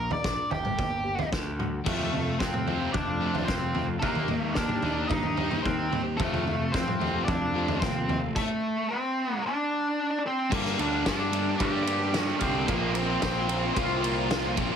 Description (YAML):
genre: quiet-loud alternative rock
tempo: 111 BPM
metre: 4/4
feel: straight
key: G minor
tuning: A4 = 440 Hz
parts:
  - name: octave-fuzz lead guitar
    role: melody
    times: 0.0-14.5 s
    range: A3 to G5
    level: -29 LUFS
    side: equal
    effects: distortion, digital delay
  - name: mellow electric guitar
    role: arpeggios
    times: 0.0-8.3 s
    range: F2 to G4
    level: -35 LUFS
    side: left 4 dB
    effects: ensemble chorus
  - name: growling picked electric bass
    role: bass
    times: 0.0-14.7 s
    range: G1 to G2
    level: -32 LUFS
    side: equal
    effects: overdrive
  - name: loose indie drum kit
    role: drums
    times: 0.1-14.7 s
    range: crash cymbal, kick drum, ride cymbal, snare drum, toms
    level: -31 LUFS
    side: right 1 dB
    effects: none
  - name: distorted electric guitar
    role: riff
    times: 1.8-14.8 s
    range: F2 to Eb4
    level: -34 LUFS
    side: left 8 dB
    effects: distortion
  - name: thick fuzz guitar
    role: riff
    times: 1.9-14.8 s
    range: F2 to Eb4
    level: -34 LUFS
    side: right 10 dB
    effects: distortion
  - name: string machine, full ensemble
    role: sustained chords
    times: 10.5-14.8 s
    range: F4 to Bb5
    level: -41 LUFS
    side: equal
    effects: none
  - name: overdriven electric guitar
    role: riff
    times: 10.5-14.8 s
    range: G2 to Bb3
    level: -33 LUFS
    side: equal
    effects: none
room: light reverb, small room ambience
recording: heavily compressed radio sound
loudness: -25 LUFS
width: side -8 dB against mid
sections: 0.0-1.9 A section; 1.9-10.5 B section; 10.5-14.8 C section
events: none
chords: 0.0 Bb; 0.5 Gm; 1.3 D; 1.9 F; 4.0 Eb; 6.2 F; 8.3 D5; 10.5 Gmadd9; 12.7 Bbsus2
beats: 0.23 0.77 1.32 | 1.86 2.40 2.94 3.48 | 4.02 4.56 5.10 5.64 | 6.19 6.73 7.27 7.81 | 8.35 8.89 9.43 9.97 | 10.51 11.05 11.60 12.13 | 12.68 13.22 13.76 14.30